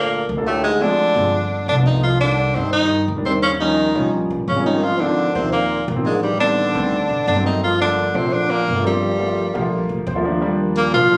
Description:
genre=jazz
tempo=172 BPM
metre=4/4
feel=straight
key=G minor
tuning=A4 = 440 Hz
part: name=clear tenor saxophone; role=melody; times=0.0-11.2 s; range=G3 to F4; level=-21 LUFS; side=equal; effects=none
part: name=clear trombone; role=second line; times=0.0-11.2 s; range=G2 to F3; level=-28 LUFS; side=equal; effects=none
part: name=warm baby grand piano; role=accompaniment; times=0.0-11.2 s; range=Eb3 to C5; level=-25 LUFS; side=equal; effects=none
part: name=upright bass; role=bass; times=0.0-11.2 s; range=G1 to G2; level=-26 LUFS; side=equal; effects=none
room=light reverb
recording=recorded on a phone in the room, club reverb, compression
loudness=-19 LUFS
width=mono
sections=0.0-10.4 A section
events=grand piano fill 9.9-10.4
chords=0.0 Gm9; 0.6 Dm7b5; 1.3 G7; 2.0 Cm9; 3.4 Eb9; 4.8 Ab69; 6.2 Am7b5; 6.9 D7b13; 7.6 Gm9; 10.4 Ebmaj9

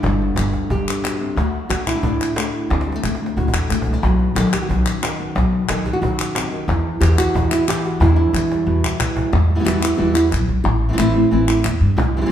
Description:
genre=flamenco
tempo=181 BPM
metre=4/4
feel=straight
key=E minor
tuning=A4 = 440 Hz
part: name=flamenco guitar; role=melody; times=0.0-12.3 s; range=E2 to A4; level=-20 LUFS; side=right 1 dB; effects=none
part: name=upright bass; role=bass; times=0.0-12.2 s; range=G1 to G2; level=-19 LUFS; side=equal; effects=none
part: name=cajon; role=percussion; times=0.0-9.2, 12.0-12.3 s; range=none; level=-26 LUFS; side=equal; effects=none
part: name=palmas hand claps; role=percussion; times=0.0-12.2 s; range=none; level=-26 LUFS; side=left 4 dB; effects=none
room=wet large studio reverb, RT60 1.3 s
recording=band playing live in one room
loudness=-16 LUFS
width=side -10 dB against mid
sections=0.0-9.3 A section; 9.3-12.3 B section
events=drum fill 2.7-4.0, 8.3-9.3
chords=0.0 G; 1.4 D; 4.0 B; 6.7 Em; 10.7 Am

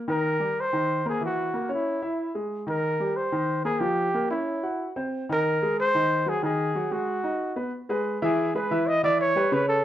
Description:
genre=jazz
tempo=184 BPM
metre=4/4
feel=straight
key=unclear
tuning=A4 = 441 Hz
part: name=warm grand piano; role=accompaniment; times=0.0-9.8 s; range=C#3 to Gb5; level=-27 LUFS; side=equal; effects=plate reverb
part: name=breathy trumpet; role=melody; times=0.1-9.8 s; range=Fb4 to D#5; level=-25 LUFS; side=equal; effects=plate reverb
room=wet small room reverb, RT60 0.5 s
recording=rough home demo mix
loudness=-23 LUFS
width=side -12 dB against mid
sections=0.0-7.7 A section; 7.7-9.8 B section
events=none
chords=0.0 Cm7; 1.2 Gb9; 2.5 Abmaj7; 3.8 Gm7b5; 4.5 Gb5; 5.1 Ab9/Eb; 6.4 Ab5; 7.7 E; 9.0 Em

